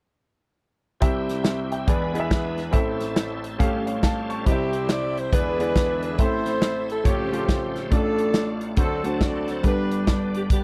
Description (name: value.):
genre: uptempo gospel.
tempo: 139 BPM.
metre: 4/4.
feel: swing 63% on 8ths.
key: C major.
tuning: A4 = 440 Hz.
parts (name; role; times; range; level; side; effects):
clear grand piano; accompaniment; 1.0-10.6 s; G1 to C#6; -28 LUFS; equal; none.
bright tonewheel organ; sustained chords; 1.0-10.6 s; C#3 to C5; -36 LUFS; equal; slow rotary speaker, chorus vibrato.
natural country drum kit; drums; 1.0-10.6 s; hi-hat, kick drum, snare drum; -25 LUFS; equal; none.
mellow saxophone section; melody; 4.5-10.6 s; B3 to D5; -29 LUFS; equal; none.
room: small room ambience.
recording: dry, close 1970s-style studio recording.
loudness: -23 LUFS.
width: mono.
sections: 1.0-4.5 A section; 4.5-10.6 B section.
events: none.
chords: 1.0 C; 1.9 E7; 2.7 Am; 3.6 A7alt; 4.5 C; 5.3 E7; 6.2 Am; 7.1 A7alt; 7.9 Dm/A; 8.8 D7; 9.6 G.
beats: | 1.02 1.45 1.89 2.31 | 2.75 3.18 3.61 4.04 | 4.47 4.90 5.33 5.76 | 6.19 6.63 7.06 7.49 | 7.92 8.35 8.78 9.21 | 9.64 10.08 10.51.